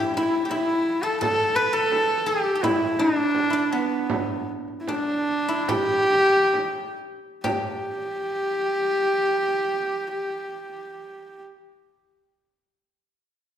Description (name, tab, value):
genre	mongolian traditional, Mongolian folk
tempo	65-86 BPM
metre	4/4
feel	straight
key	G gong mode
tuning	A4 = 439 Hz
part	bright horsehead fiddle	melody	0.0-11.4 s	B3 to B4	-23 LUFS	equal	none
part	guzheng	second line	0.0-11.4 s	B3 to B4	-27 LUFS	equal	none
part	frame drum	percussion	0.2-7.9 s	none	-32 LUFS	right 3 dB	none
room	wet scoring stage reverb, RT60 1.6 s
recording	recorded in a church or concert hall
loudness	-21 LUFS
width	side -9 dB against mid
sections	0.0-7.4 A section; 7.4-11.2 B section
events	slowing down 1.2-7.4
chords	none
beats	0.51 | 1.21 1.92 2.63 3.35 | 4.10 4.88 5.69 6.54 | 7.44 8.37 9.30 10.22